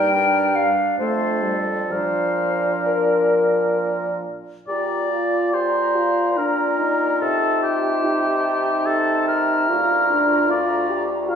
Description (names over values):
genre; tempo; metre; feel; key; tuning
classical, slow romantic movement for wind quintet; 63-76 BPM; 3/4; rubato; Bb major; A4 = 440 Hz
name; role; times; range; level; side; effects
silver concert flute; melody; 0.0-11.4 s; Bb4 to Bb5; -24 LUFS; left 4 dB; none
warm oboe; second line; 0.0-11.4 s; G4 to F5; -22 LUFS; left 1 dB; none
warm French horn; accompaniment; 0.0-11.4 s; F3 to G4; -26 LUFS; equal; none
warm clarinet; accompaniment; 0.0-11.4 s; D4 to F4; -28 LUFS; right 2 dB; none
clear bassoon; bass; 0.0-11.4 s; D2 to C3; -24 LUFS; right 2 dB; none
room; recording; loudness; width
wet recital hall reverb, RT60 1.3 s; heard from further back in the room; -18 LUFS; side -7 dB against mid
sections
0.0-4.7 A section; 4.7-11.4 B section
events
none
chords
0.0 Gm; 1.0 F; 1.9 Bb; 7.2 Adim/C; 9.7 Bb/D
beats
0.14 1.00 | 1.92 2.85 3.77 | 4.68 5.53 6.37 | 7.21 8.04 8.86 | 9.69 10.50 11.31